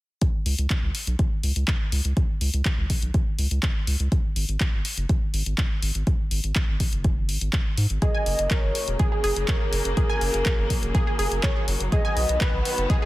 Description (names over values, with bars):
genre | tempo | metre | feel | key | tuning
progressive house | 123 BPM | 4/4 | straight | unclear | A4 = 440 Hz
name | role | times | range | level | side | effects
electronic kick drum | drums | 0.2-13.0 s | none | -23 LUFS | equal | none
house drum kit | drums | 0.2-13.0 s | handclaps, hi-hat | -29 LUFS | left 1 dB | sidechain pumping on hats
round analog bass | bass | 0.5-12.9 s | E1 to G#2 | -25 LUFS | equal | sidechain pumping
warm velvety synth lead | melody | 8.0-13.1 s | G#4 to D#5 | -29 LUFS | right 1 dB | chorus, cassette tape, sidechain pumping, digital delay
rich studio string section | sustained chords | 8.0-13.1 s | C#3 to B3 | -31 LUFS | left 1 dB | sidechain pumping
wide unison pluck | arpeggios | 8.0-13.1 s | G#4 to G#5 | -30 LUFS | right 1 dB | sidechain pumping, digital delay
room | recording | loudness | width
light reverb | dense, heavily limited modern master | -21 LUFS | side -17 dB against mid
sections
0.2-13.1 A section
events
none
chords
0.2 N.C.; 4.1 F#sus2; 8.0 F#; 11.9 B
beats
| 0.22 0.70 1.19 1.68 | 2.17 2.65 3.14 3.63 | 4.12 4.61 5.09 5.58 | 6.07 6.56 7.04 7.53 | 8.02 8.51 9.00 9.48 | 9.97 10.46 10.95 11.44 | 11.92 12.41 12.90